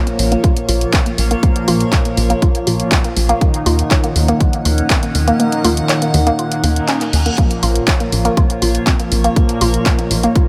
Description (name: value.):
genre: melodic techno.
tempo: 121 BPM.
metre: 4/4.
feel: straight.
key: Bb minor.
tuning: A4 = 437 Hz.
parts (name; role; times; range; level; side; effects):
evolving wavetable pad; sustained chords; 0.0-10.5 s; Eb3 to Gb5; -27 LUFS; equal; phaser, built-in reverb, sidechain pumping.
woody wave-folded pluck; arpeggios; 0.0-10.5 s; Bb3 to Db5; -23 LUFS; equal; analog chorus, cassette tape, sidechain pumping, dub echo.
brassy analog pad; stabs; 0.0-10.5 s; Bb2 to Eb4; -23 LUFS; equal; chorus, vintage 12-bit sampler grit, sidechain pumping, dub echo.
analog drone; drone; 1.2-10.5 s; Bb2 to F3; -33 LUFS; equal; none.
punchy analog drum machine; drums; 0.1-10.5 s; handclaps, hi-hat; -23 LUFS; equal; none.
plucky analog bass; bass; 0.2-10.3 s; Bb1 to Eb2; -18 LUFS; equal; sidechain pumping.
electronic kick drum; drums; 0.4-10.5 s; none; -16 LUFS; equal; none.
reverse cymbal; sound effects; 6.8-7.4 s; none; -31 LUFS; equal; none.
room: light reverb.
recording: none.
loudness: -15 LUFS.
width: mono.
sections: 0.0-10.5 A section.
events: filter sweep on synth pluck 0.0-10.5; kick drops out 5.4-7.4; reverse cymbal 6.8-7.4.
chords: 0.0 Bbm; 3.4 Ebm7; 7.4 Bbm.